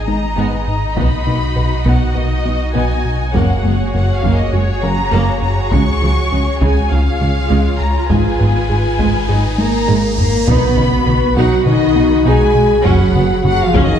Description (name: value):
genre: cinematic, hybrid orchestral and electronic film score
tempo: 101 BPM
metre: 4/4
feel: straight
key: unclear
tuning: A4 = 441 Hz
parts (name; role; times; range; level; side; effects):
- warm symphonic violin section; melody; 0.0-14.0 s; C#5 to C#6; -24 LUFS; left 3 dB; none
- warm symphonic violin section; second line; 0.0-14.0 s; F#4 to B5; -24 LUFS; left 2 dB; none
- rich symphonic viola section; accompaniment; 0.0-14.0 s; F#3 to G#4; -22 LUFS; right 3 dB; none
- warm sub bass; bass; 0.0-14.0 s; F#1 to C#2; -21 LUFS; equal; none
- tight sequenced synth; arpeggios; 0.1-13.9 s; C#3 to B4; -26 LUFS; left 2 dB; chorus, ping-pong delay
- rubbery square bass; riff; 0.1-13.9 s; C#2 to B3; -18 LUFS; left 1 dB; none
- rich symphonic double bass section; bass; 0.1-13.8 s; F#1 to C#2; -23 LUFS; right 3 dB; none
- warm chamber cello section; bass; 0.1-14.0 s; F#2 to B3; -22 LUFS; right 4 dB; none
- taiko ensemble; drums; 1.0-14.0 s; none; -20 LUFS; equal; none
- riser and impact; sound effects; 8.3-12.9 s; none; -27 LUFS; equal; none
- mellow French horn section; sustained chords; 9.6-14.0 s; D#4 to B4; -16 LUFS; left 2 dB; none
room: wet scoring stage reverb, RT60 1.6 s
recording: dark, warm production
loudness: -12 LUFS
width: side -9 dB against mid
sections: 0.0-10.5 A section; 10.5-14.0 A section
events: riser 8.3-10.5; drum fill 9.6-10.5; impact 10.5-12.9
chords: 0.0 G#m; 1.0 B; 3.3 F#add9; 5.7 C#; 8.1 G#m; 10.5 B; 12.9 F#add9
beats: 0.38 | 0.97 1.56 2.16 2.75 | 3.35 3.94 4.54 5.13 | 5.72 6.32 6.91 7.51 | 8.10 8.69 9.29 9.88 | 10.48 11.07 11.66 12.26 | 12.85 13.45